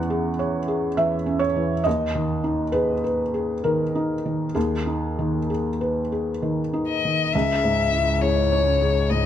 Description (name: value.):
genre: neoclassical piano and strings.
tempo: 64-69 BPM.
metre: 3/4.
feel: rubato.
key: C# dorian.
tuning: A4 = 441 Hz.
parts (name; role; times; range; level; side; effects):
felt-muted upright piano; accompaniment; 0.0-9.3 s; C#2 to F#5; -22 LUFS; equal; none.
rich violin; melody; 6.9-9.3 s; C#5 to E5; -21 LUFS; left 5 dB; none.
vibraphone with soft mallets; arpeggios; 7.3-8.8 s; C#4 to G#4; -32 LUFS; left 1 dB; slapback echo.
clear double bass; bass; 7.3-9.3 s; C#2; -24 LUFS; left 1 dB; none.
room: light reverb.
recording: none.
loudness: -20 LUFS.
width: side -10 dB against mid.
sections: 0.0-7.3 A section; 7.3-9.3 A section.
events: none.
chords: 0.0 C#m/E; 1.9 G#m/D#; 7.3 C#m.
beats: 0.11 0.98 | 1.85 2.73 3.64 | 4.55 5.49 6.41 | 7.33 8.22 9.10.